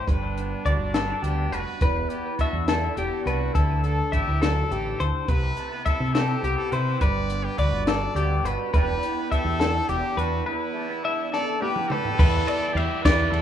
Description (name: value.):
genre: math rock and midwest emo.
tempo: 69 BPM (dotted quarters).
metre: 6/8.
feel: straight.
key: E minor.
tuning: A4 = 437 Hz.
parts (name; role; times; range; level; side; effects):
brilliant trumpet; melody; 0.0-13.4 s; D4 to D5; -33 LUFS; right 1 dB; tape echo.
electric guitar through a small old amp; accompaniment; 0.0-13.4 s; E2 to G4; -32 LUFS; right 6 dB; ensemble chorus.
twelve-string electric guitar; arpeggios; 0.0-13.4 s; G4 to E5; -27 LUFS; left 4 dB; tape echo.
growling fingered electric bass; bass; 0.1-13.4 s; E1 to C3; -26 LUFS; equal; overdrive.
compact cocktail drum kit; drums; 0.1-13.4 s; crash cymbal, hi-hat, kick drum, ride cymbal, snare drum, toms; -24 LUFS; equal; none.
biting overdriven guitar; riff; 12.2-13.4 s; E3 to E4; -31 LUFS; right 2 dB; none.
room: light reverb.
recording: rough home demo mix, studio reverb.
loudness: -22 LUFS.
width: side -10 dB against mid.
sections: 0.0-12.2 A section; 12.2-13.4 B section.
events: break 10.5-12.2; drum fill 11.3-12.2.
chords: 0.1 Gmaj7; 1.8 Em7; 3.5 Dsus2; 5.3 Cmaj7; 7.0 Gmaj7; 8.7 Em7.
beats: | 0.07 0.94 | 1.81 2.68 | 3.55 4.42 | 5.28 6.15 | 7.01 7.88 | 8.74 9.61 | 10.47 11.33 | 12.19 13.05.